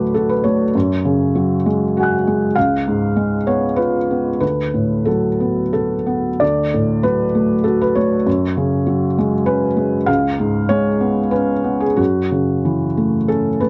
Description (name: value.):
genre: neoclassical minimalist piano.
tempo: 87-102 BPM.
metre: 3/4.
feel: rubato.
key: F# minor.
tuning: A4 = 440 Hz.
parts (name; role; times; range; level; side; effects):
felt-muted upright piano; solo; 0.0-13.7 s; C#2 to F#6; -17 LUFS; equal; none.
room: moderate booth ambience, RT60 0.2 s.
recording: worn, warbling old tape, cassette tape, warbly pitch drift.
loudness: -17 LUFS.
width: mono.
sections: 0.0-13.7 A section.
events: none.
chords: 0.0 D; 0.7 F#sus2; 2.6 C#7; 4.4 Bm7/D; 6.4 D; 8.3 F#sus2; 10.1 C#7; 12.0 F#m7.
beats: 0.14 | 0.74 1.36 1.97 | 2.56 3.16 3.77 | 4.42 5.08 5.74 | 6.41 7.05 7.66 | 8.26 8.86 9.46 | 10.08 10.69 11.33 | 11.99 12.65 13.29.